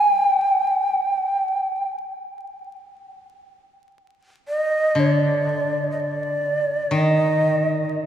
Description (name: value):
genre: japanese traditional, Japanese chamber music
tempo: 60 BPM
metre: 4/4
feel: rubato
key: unclear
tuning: A4 = 439 Hz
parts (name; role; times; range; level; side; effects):
- breathy hollow shakuhachi; melody; 0.0-7.9 s; D5 to G5; -20 LUFS; right 1 dB; none
- koto; accompaniment; 5.0-8.1 s; D3 to Eb3; -22 LUFS; left 1 dB; none
room: wet cathedral reverb, RT60 4.4 s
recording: recorded in a church or concert hall, vinyl crackle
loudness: -18 LUFS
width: side -9 dB against mid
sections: 0.0-3.0 A section; 3.0-8.1 B section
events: none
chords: none